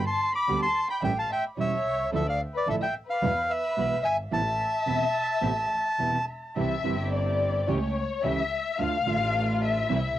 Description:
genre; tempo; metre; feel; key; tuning
tango; 109 BPM; 4/4; rubato; A minor, C major from 6.6 s; A4 = 439 Hz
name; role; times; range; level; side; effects
bandoneon; melody; 0.0-6.2 s; D5 to D6; -27 LUFS; right 1 dB; cassette tape, tape echo
dark studio violin section; second line; 0.0-10.2 s; A4 to B5; -30 LUFS; left 5 dB; cassette tape
warm double bass; bass; 0.0-10.1 s; E1 to E2; -32 LUFS; equal; tube saturation
nylon-string guitar; accompaniment; 0.5-10.0 s; B2 to G4; -30 LUFS; right 5 dB; cassette tape
warm studio string section; stabs; 6.6-10.1 s; G3 to G4; -33 LUFS; right 3 dB; cassette tape
room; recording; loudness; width
wet booth ambience, RT60 0.2 s; home recording on cassette; -24 LUFS; side -13 dB against mid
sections
0.0-6.6 A section; 6.6-10.2 B section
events
violin section solo 6.6-10.2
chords
0.0 G; 1.0 A7; 2.1 Dmadd9; 3.2 E; 4.3 Amadd9; 6.6 C; 7.7 A7/C#; 8.8 Dm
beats
0.48 1.03 1.58 | 2.13 2.67 3.23 3.77 | 4.32 4.87 5.43 6.00 | 6.57 7.13 7.69 8.24 | 8.79 9.34 9.90

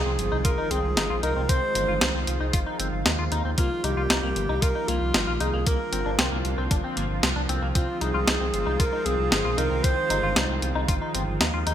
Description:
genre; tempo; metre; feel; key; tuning
synthwave; 115 BPM; 4/4; straight; unclear; A4 = 439 Hz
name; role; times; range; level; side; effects
mellow alto saxophone; melody; 0.0-10.6 s; F4 to C5; -28 LUFS; equal; ping-pong delay
lush unison pad; sustained chords; 0.0-11.7 s; D3 to F4; -31 LUFS; right 1 dB; chorus, sidechain pumping
dark detuned saw bass; bass; 0.0-11.7 s; G1 to Eb2; -28 LUFS; equal; none
sub drop; sound effects; 0.0-1.5 s; none; -38 LUFS; right 1 dB; none
clean electric guitar; arpeggios; 0.1-11.7 s; Bb3 to F4; -31 LUFS; left 3 dB; analog chorus, digital delay
clean 12-bit digital drum machine; drums; 0.2-11.7 s; hi-hat, snare drum; -26 LUFS; equal; none
electronic kick drum; drums; 0.4-11.0 s; none; -25 LUFS; equal; none
room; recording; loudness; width
moderate plate reverb, RT60 1.4 s; bright 1980s-style digital production; -22 LUFS; side -10 dB against mid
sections
0.0-11.7 A section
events
impact 0.0-1.5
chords
0.0 Fm7; 1.5 Ab6; 3.6 Ebadd9; 5.7 Bbadd9; 7.8 Fm7; 9.8 Ab6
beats
0.45 0.97 | 1.49 2.02 2.54 3.06 | 3.58 4.10 4.62 5.14 | 5.67 6.19 6.71 7.23 | 7.75 8.28 8.80 9.32 | 9.84 10.36 10.88 11.41

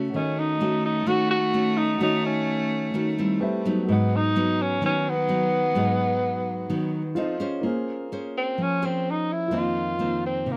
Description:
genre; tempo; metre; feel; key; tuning
bossa nova; 128 BPM; 4/4; straight; unclear; A4 = 441 Hz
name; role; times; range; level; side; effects
dark grand piano; accompaniment; 0.0-10.6 s; A3 to E5; -36 LUFS; equal; none
nylon-string guitar; accompaniment; 0.0-10.6 s; F2 to C5; -28 LUFS; equal; none
warm cello; second line; 0.1-7.6 s; F3 to A3; -33 LUFS; equal; none
mellow tenor saxophone; melody; 0.2-10.6 s; Bb3 to F#4; -27 LUFS; equal; none
room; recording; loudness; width
little or no reverb; close, detailed microphones; -25 LUFS; mono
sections
0.0-7.6 A section; 7.6-10.6 B section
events
tenor saxophone solo 7.6-10.6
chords
0.1 D#m7b5; 3.4 Am7; 3.9 G#m7; 7.2 F7; 7.6 Bbm9; 9.5 F7sus4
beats
| 0.13 0.59 1.06 1.53 | 2.00 2.48 2.94 3.41 | 3.88 4.35 4.82 5.29 | 5.76 6.23 6.70 7.17 | 7.64 8.11 8.58 9.05 | 9.52 9.99 10.46

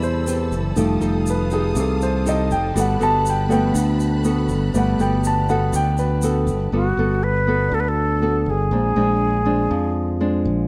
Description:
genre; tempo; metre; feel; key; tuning
bossa nova; 121 BPM; 4/4; straight; G major; A4 = 440 Hz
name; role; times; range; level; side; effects
nylon-string guitar; accompaniment; 0.0-10.7 s; Bb2 to B4; -26 LUFS; equal; none
warm grand piano; accompaniment; 0.0-6.7 s; C3 to A5; -24 LUFS; equal; none
warm symphonic string section; sustained chords; 0.0-6.7 s; A4 to F#6; -36 LUFS; equal; none
modern bright fingered electric bass; bass; 0.0-10.7 s; F1 to F2; -24 LUFS; equal; none
egg shaker; percussion; 0.0-6.7 s; none; -38 LUFS; equal; none
breathy mellow concert flute; melody; 6.7-10.5 s; F#4 to B4; -25 LUFS; equal; none
room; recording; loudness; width
light reverb; none; -20 LUFS; mono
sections
0.0-6.7 A section; 6.7-10.7 B section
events
grand piano solo 0.0-6.7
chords
0.0 Am9; 0.8 F9; 2.8 Gmaj9; 8.7 Bb9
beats
0.27 | 0.77 1.26 1.76 2.26 | 2.75 3.25 3.75 4.24 | 4.74 5.24 5.73 6.23 | 6.73 7.22 7.72 8.22 | 8.71 9.21 9.71 10.21

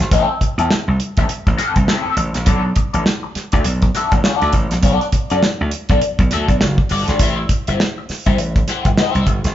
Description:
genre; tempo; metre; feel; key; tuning
funk; 102 BPM; 4/4; swing 60% on 16ths; A dorian; A4 = 440 Hz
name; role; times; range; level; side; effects
electric guitar at the edge of break-up; accompaniment; 0.0-9.5 s; C4 to F#5; -20 LUFS; left 4 dB; wah, phaser
slap bass; bass; 0.0-9.5 s; F#1 to F#2; -20 LUFS; equal; none
damped 70s drum kit; drums; 0.0-9.5 s; hi-hat, kick drum, snare drum; -17 LUFS; equal; none
room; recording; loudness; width
moderate large studio reverb, RT60 1.4 s; band playing live in one room, nothing above 7.6 kHz; -14 LUFS; side -12 dB against mid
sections
0.0-9.5 A section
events
none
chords
0.0 Am7; 2.5 Bm7; 7.2 Am7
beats
| 0.11 0.70 1.29 1.88 | 2.47 3.06 3.65 4.24 | 4.83 5.42 6.01 6.61 | 7.20 7.79 8.38 8.97

